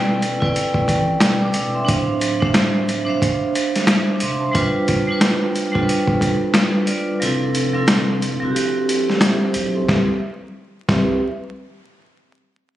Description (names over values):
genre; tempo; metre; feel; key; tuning
hip hop, boom-bap hip-hop; 90 BPM; 4/4; swing 60% on 16ths; C major; A4 = 441 Hz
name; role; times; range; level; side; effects
vibraphone with hard mallets; accompaniment; 0.0-11.2 s; F3 to E6; -20 LUFS; right 2 dB; cassette tape, high-pass filter, low-pass filter
saturated sub bass; bass; 0.0-11.2 s; D1 to C2; -24 LUFS; left 1 dB; none
dusty soul sampler-style drum kit; drums; 0.2-11.1 s; hi-hat, kick drum, snare drum; -19 LUFS; equal; overdrive
room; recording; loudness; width
light reverb, digital ambience; recorded on a phone in the room, studio reverb, vinyl crackle, compression; -16 LUFS; side -13 dB against mid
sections
0.0-4.6 A section; 4.6-9.9 B section; 9.9-12.6 C section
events
filter sweep on vibraphone 4.6-9.9; kick muted 7.2-9.9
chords
0.0 Em7; 1.9 Dm9; 4.6 G7; 7.2 Fmaj7; 9.9 Cmaj7